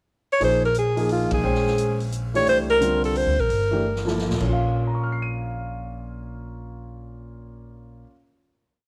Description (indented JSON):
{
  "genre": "modal jazz",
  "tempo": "175 BPM",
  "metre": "3/4",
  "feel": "swing 65% on 8ths",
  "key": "Bb dorian",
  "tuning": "A4 = 441 Hz",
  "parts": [
    { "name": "warm alto saxophone", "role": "melody", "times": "0.3-4.2 s", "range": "F4 to Db5", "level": "-24 LUFS", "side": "equal", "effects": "none" },
    { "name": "warm concert grand piano", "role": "accompaniment", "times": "0.4-8.2 s", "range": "Bb2 to Eb7", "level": "-30 LUFS", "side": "equal", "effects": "none" },
    { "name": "upright bass", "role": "bass", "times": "0.4-8.0 s", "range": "G1 to D2", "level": "-30 LUFS", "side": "equal", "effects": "none" },
    { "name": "open jazz drum kit", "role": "drums", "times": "0.4-4.5 s", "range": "crash cymbal, hi-hat, kick drum, ride cymbal, snare drum", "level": "-38 LUFS", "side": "equal", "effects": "none" }
  ],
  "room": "light reverb, small room ambience",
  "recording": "none",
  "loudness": "-22 LUFS",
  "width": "mono",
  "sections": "0.0-0.4 pickup bar; 0.4-4.5 A section; 4.5-6.6 final chord",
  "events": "band accent 1.3; drum fill 3.8-4.5",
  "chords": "0.4 Bb13sus4; 2.5 C13sus4; 4.4 Bbm"
}